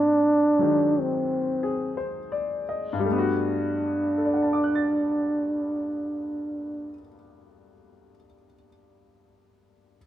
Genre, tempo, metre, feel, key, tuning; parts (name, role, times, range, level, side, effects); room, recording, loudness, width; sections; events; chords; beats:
jazz ballad; 54-63 BPM; 4/4; swing 66% on 8ths; G major; A4 = 442 Hz
trombone with bucket mute; melody; 0.0-7.0 s; C4 to D4; -23 LUFS; right 1 dB
warm concert grand piano; accompaniment; 0.0-10.0 s; G2 to A6; -29 LUFS; left 4 dB
light reverb; close, detailed microphones; -23 LUFS; side -12 dB against mid
0.0-3.1 A section; 3.1-7.5 B section
slowing down 0.0-3.1
0.0 Ab7; 3.1 Gmaj9
0.95 1.97 | 3.06 4.17 5.27 6.36